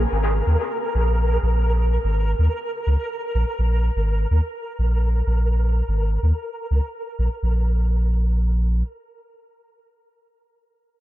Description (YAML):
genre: dub techno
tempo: 125 BPM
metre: 4/4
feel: swing 56% on 16ths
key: unclear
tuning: A4 = 440 Hz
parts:
  - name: soft dub sub bass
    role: bass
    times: 0.0-8.8 s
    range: Ab1 to Eb2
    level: -18 LUFS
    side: equal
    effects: none
  - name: flickering grainy texture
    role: texture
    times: 0.0-7.4 s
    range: Bb4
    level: -29 LUFS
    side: equal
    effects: built-in reverb
room: digital ambience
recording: none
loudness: -19 LUFS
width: side -15 dB against mid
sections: 0.0-7.4 A section; 7.4-11.0 B section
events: filter sweep on sub bass 0.0-7.4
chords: 0.0 Bb7(no3); 7.4 N.C.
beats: 0.23 0.71 1.19 | 1.67 2.15 2.63 3.11 | 3.59 4.07 4.55 5.03 | 5.51 5.99 6.47 6.95 | 7.43 7.91 8.39